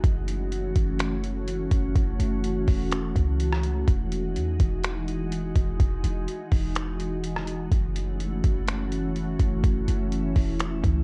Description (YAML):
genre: hip hop, atmospheric cloud-rap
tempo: 125 BPM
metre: 4/4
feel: half-time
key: unclear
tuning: A4 = 440 Hz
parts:
  - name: glassy FM pad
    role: sustained chords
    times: 0.0-11.0 s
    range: E3 to F#4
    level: -32 LUFS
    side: equal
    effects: ensemble chorus, built-in reverb, sidechain pumping
  - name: clean 808-style bass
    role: bass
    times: 0.0-11.0 s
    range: E1 to E2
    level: -29 LUFS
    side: equal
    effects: none
  - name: trip hop sampler-style drum kit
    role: drums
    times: 0.0-10.9 s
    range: finger snaps, hi-hat, kick drum, rim click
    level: -29 LUFS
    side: equal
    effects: none
room: little or no reverb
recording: worn, warbling old tape, cassette tape, warbly pitch drift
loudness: -26 LUFS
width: mono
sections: 0.0-11.0 A section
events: none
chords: 0.0 F#m7; 3.9 Emaj9; 7.7 F#m7